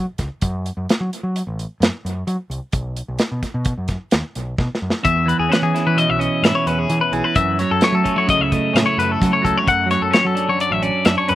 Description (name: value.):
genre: math rock and midwest emo.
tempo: 130 BPM.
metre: 5/4.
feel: straight.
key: E major.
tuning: A4 = 440 Hz.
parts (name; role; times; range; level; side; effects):
growling fingered electric bass; bass; 0.0-11.3 s; A1 to F#3; -23 LUFS; equal; overdrive.
modern studio drum kit; drums; 0.2-11.3 s; hi-hat, kick drum, snare drum; -20 LUFS; equal; none.
clean electric guitar; accompaniment; 5.0-11.3 s; E2 to E4; -20 LUFS; right 4 dB; none.
twangy electric guitar; arpeggios; 5.0-11.3 s; G#4 to F#5; -18 LUFS; left 5 dB; slapback echo.
room: little or no reverb.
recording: recorded outdoors, with no room sound.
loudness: -16 LUFS.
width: side -14 dB against mid.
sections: 0.0-11.3 A section.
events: drum fill 4.6-5.0.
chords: 0.4 N.C.; 5.0 E6; 7.3 F#m7; 9.7 Dmaj7.